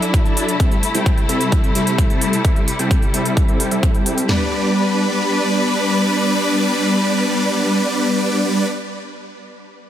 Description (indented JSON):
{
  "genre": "EDM, festival progressive house",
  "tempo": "130 BPM",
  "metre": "4/4",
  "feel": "straight",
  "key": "G major",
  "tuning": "A4 = 439 Hz",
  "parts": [
    { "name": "rich studio string section", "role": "sustained chords", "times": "0.0-8.7 s", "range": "C3 to B4", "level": "-23 LUFS", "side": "left 1 dB", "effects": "sidechain pumping" },
    { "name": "big supersaw lead", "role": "riff", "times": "0.0-8.7 s", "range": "F#3 to A5", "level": "-18 LUFS", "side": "equal", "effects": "sidechain pumping, low-pass filter, digital delay" },
    { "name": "electronic hi-hat", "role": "drums", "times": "0.0-4.3 s", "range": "none", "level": "-25 LUFS", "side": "equal", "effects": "none" },
    { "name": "big-room dance drum kit", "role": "drums", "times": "0.1-4.4 s", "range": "kick drum, snare drum, toms", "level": "-16 LUFS", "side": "equal", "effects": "none" }
  ],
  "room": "light reverb",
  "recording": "none",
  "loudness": "-15 LUFS",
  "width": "side -11 dB against mid",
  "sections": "0.0-4.3 A section; 4.3-8.0 B section",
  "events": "filter sweep on supersaw synth 0.0-4.3",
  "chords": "0.0 Dadd9; 0.6 C6; 4.3 G"
}